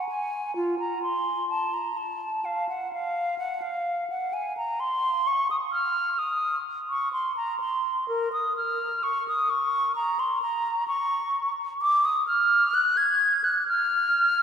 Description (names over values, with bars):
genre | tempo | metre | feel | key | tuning
classical, baroque-style fantasia for unaccompanied flute | 64 BPM | 4/4 | rubato | Bb minor | A4 = 440 Hz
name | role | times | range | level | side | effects
hollow concert flute | solo | 0.0-14.4 s | F4 to Ab6 | -23 LUFS | equal | none
room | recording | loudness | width
wet cathedral reverb, RT60 4.2 s | heard from further back in the room | -23 LUFS | side -7 dB against mid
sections
0.0-14.4 A section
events
none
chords
none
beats
| 0.55 1.49 2.44 3.39 | 4.32 5.26 6.19 7.12 | 8.08 9.03 9.95 10.88 | 11.80 12.73 13.67